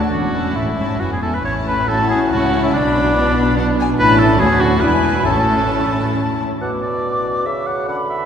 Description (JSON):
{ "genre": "quick classical-period movement for symphony orchestra", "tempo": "131-150 BPM", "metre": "3/4", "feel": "rubato", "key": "A major", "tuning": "A4 = 440 Hz", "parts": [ { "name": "warm chamber violin section", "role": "melody", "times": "0.0-6.4 s", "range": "F#5 to B5", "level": "-27 LUFS", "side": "left 4 dB", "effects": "none" }, { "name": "concert flute", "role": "second line", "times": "0.0-8.3 s", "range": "D5 to D6", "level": "-22 LUFS", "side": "left 1 dB", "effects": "none" }, { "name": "warm chamber violin section", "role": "second line", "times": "0.0-6.4 s", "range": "D4 to F#4", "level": "-28 LUFS", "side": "left 3 dB", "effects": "none" }, { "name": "warm chamber viola section", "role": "accompaniment", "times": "0.0-6.4 s", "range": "B3 to E4", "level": "-25 LUFS", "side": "equal", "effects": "none" }, { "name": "mellow French horn section", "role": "sustained chords", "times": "0.0-6.4 s", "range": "B3 to F#4", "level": "-22 LUFS", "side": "left 3 dB", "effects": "none" }, { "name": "rich chamber double bass section", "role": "bass", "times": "0.0-6.4 s", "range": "E1 to D2", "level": "-23 LUFS", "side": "right 2 dB", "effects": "none" }, { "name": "warm symphonic cello section", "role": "bass", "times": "0.0-6.4 s", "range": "D2 to C#3", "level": "-24 LUFS", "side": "right 2 dB", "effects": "none" }, { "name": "clear oboe", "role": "second line", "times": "0.1-8.3 s", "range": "D4 to F#5", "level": "-22 LUFS", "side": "right 1 dB", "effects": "none" }, { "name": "warm bassoon", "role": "accompaniment", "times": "6.6-8.3 s", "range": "B2 to D3", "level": "-23 LUFS", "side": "right 1 dB", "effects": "none" } ], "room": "wet cathedral reverb, RT60 5.8 s", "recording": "recorded in a church or concert hall", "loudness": "-14 LUFS", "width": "side -8 dB against mid", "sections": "0.0-6.6 A section; 6.6-8.3 B section", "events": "none", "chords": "0.1 A/E; 1.0 E; 1.4 A; 2.7 G#dim/B (rootless); 4.0 A; 4.4 D; 4.8 E7; 5.3 A; 6.6 Bm" }